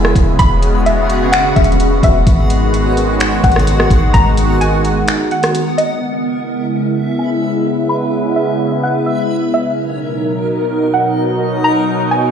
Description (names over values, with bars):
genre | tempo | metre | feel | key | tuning
hip hop, atmospheric cloud-rap | 128 BPM | 4/4 | half-time | unclear | A4 = 441 Hz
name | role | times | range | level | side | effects
soft round pluck | melody | 0.0-12.3 s | D#5 to B5 | -19 LUFS | left 1 dB | chorus, low-pass filter, ping-pong delay
sweeping resonant pad | sustained chords | 0.0-12.3 s | B2 to A#4 | -16 LUFS | right 1 dB | chorus, sidechain pumping, low-pass filter
soft 808-style bass | bass | 0.0-5.0 s | D#1 to G#1 | -16 LUFS | equal | none
smooth R&B drum kit | drums | 0.0-5.9 s | finger snaps, hi-hat, kick drum, rim click | -15 LUFS | equal | none
backwards swelling texture | texture | 0.0-12.3 s | B3 to F#5 | -23 LUFS | left 2 dB | built-in reverb
room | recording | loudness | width
light reverb | played on a big sound system in a bare room, stone room reverb | -12 LUFS | side -8 dB against mid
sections
0.0-6.0 A section; 6.0-12.3 B section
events
break 5.1-6.0; filter sweep 6.0-12.3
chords
0.0 E6; 2.3 G#m7; 6.0 C#m7; 9.8 Bmaj7